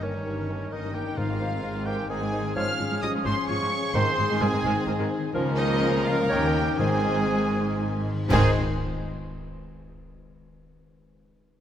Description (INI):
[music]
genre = classical, dramatic, fast romantic movement for symphony orchestra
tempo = 118-132 BPM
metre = 3/4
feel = straight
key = Ab major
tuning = A4 = 440 Hz
[part]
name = warm symphonic violin section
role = melody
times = 0.0-8.6 s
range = Db5 to F6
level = -34 LUFS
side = left 2 dB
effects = none
[part]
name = clear cor anglais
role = second line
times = 0.0-8.5 s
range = Db4 to F5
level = -33 LUFS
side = right 2 dB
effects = none
[part]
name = large flute ensemble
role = second line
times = 0.0-8.6 s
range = C5 to F6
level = -35 LUFS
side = equal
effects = none
[part]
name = mellow clarinet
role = second line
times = 0.0-8.5 s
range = Bb4 to Db5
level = -37 LUFS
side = left 2 dB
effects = none
[part]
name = warm symphonic violin section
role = second line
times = 0.0-8.6 s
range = C4 to C5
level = -35 LUFS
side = left 1 dB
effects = none
[part]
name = dark bassoon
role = accompaniment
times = 0.0-8.5 s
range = Eb3 to F3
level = -37 LUFS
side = right 2 dB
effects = none
[part]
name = warm symphonic viola section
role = accompaniment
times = 0.0-8.6 s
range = Eb3 to C4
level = -33 LUFS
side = right 2 dB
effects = none
[part]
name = mellow French horn section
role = sustained chords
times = 0.0-8.5 s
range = Eb3 to Eb4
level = -35 LUFS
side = left 4 dB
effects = none
[part]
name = concert harp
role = arpeggios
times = 0.0-9.8 s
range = G2 to Eb5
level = -35 LUFS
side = left 6 dB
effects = none
[part]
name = clear trumpet section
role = stabs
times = 0.0-8.5 s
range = Ab4 to Bb4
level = -33 LUFS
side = equal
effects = none
[part]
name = dark symphonic cello section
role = bass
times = 0.0-8.6 s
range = Db2 to Ab2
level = -32 LUFS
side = right 2 dB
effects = none
[part]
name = warm symphonic double bass section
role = bass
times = 0.0-8.6 s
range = G1 to Eb2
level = -31 LUFS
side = right 2 dB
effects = none
[part]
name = timpani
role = percussion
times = 1.2-1.8, 3.9-4.6, 6.8-8.5 s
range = Ab2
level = -34 LUFS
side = left 1 dB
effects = none
[part]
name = cymbal swell, clash cymbals and concert bass drum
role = percussion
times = 5.3-9.2 s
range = none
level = -34 LUFS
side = equal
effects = none
[sound]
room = wet concert hall reverb, RT60 2.4 s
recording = none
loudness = -23 LUFS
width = side -10 dB against mid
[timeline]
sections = 0.0-8.3 A section; 8.3-9.8 B section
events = band accent 8.3-8.8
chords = 0.0 Eb7/G; 1.2 Ab; 2.6 Db/Ab; 4.0 Ab; 5.3 Bbm/Db; 6.3 Eb7; 6.8 Ab